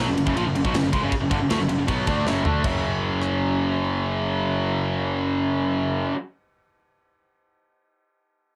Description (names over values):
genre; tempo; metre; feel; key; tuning
heavy metal; 158 BPM; 4/4; straight; unclear; A4 = 441 Hz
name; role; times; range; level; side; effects
tight distorted guitar; riff; 0.0-6.2 s; F#2 to D4; -25 LUFS; equal; distortion
fuzz picked electric bass; bass; 0.0-6.0 s; F#1 to D2; -30 LUFS; equal; overdrive
tight metal drum kit; drums; 0.2-3.3 s; crash cymbal, kick drum, ride cymbal, rim click, snare drum, toms; -30 LUFS; equal; cassette tape
room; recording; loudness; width
little or no reverb; home recording on cassette; -23 LUFS; mono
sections
0.0-2.6 A section; 2.6-5.7 B section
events
drum fill 2.3-2.6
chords
0.0 F#5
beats
0.36 0.74 | 1.12 1.50 1.88 2.26 | 2.64 3.02 3.40 3.78 | 4.16 4.54 4.92 5.30